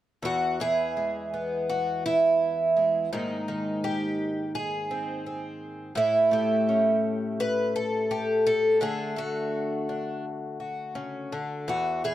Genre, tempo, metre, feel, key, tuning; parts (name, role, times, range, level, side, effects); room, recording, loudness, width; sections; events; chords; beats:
folk, solo fingerstyle acoustic guitar; 84 BPM; 4/4; rubato; E mixolydian; A4 = 440 Hz
picked twelve-string acoustic guitar; solo; 0.2-12.1 s; E2 to B4; -24 LUFS; equal
little or no reverb; close, detailed microphones; -24 LUFS; side -13 dB against mid
0.2-12.1 A section
0.2 E; 3.1 G#add9; 6.0 A7; 8.8 D
| 0.23 0.96 1.69 2.41 | 3.13 3.84 4.55 5.25 | 5.96 6.67 7.38 8.09 | 8.80 9.52 10.24 10.96 | 11.69